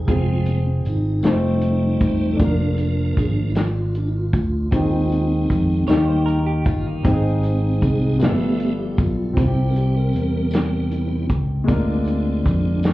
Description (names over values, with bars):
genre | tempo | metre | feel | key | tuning
slow gospel | 52 BPM (dotted quarters) | 6/8 | straight | Ab major | A4 = 440 Hz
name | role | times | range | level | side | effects
warm concert grand piano | accompaniment | 0.0-12.9 s | G2 to C5 | -24 LUFS | left 3 dB | none
tonewheel organ | sustained chords | 0.0-12.8 s | F3 to E5 | -24 LUFS | right 2 dB | fast rotary speaker, overdrive, chorus vibrato
fingered electric bass | bass | 0.0-12.9 s | Fb1 to F2 | -21 LUFS | equal | none
warm soul drum kit | drums | 0.1-12.9 s | hi-hat, kick drum, snare drum | -21 LUFS | equal | none
tambourine | percussion | 0.5-12.9 s | none | -52 LUFS | left 8 dB | none
clean electric guitar | second line | 5.9-7.2 s | Eb4 to Db5 | -32 LUFS | right 5 dB | tremolo
room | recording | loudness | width
light reverb, small room ambience | heard muffled through a wall, club reverb, EQ | -17 LUFS | side -17 dB against mid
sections
0.0-12.9 A section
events
tonewheel organ solo 0.0-12.9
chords
0.1 Fm; 1.2 F7; 2.4 Bb/F; 4.7 Ab/Eb; 5.9 Eb; 7.0 Ab; 8.2 G13; 9.4 C; 11.7 Bb7/D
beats
| 0.09 1.25 | 2.40 3.57 | 4.73 5.89 | 7.05 8.21 | 9.37 10.53 | 11.69 12.85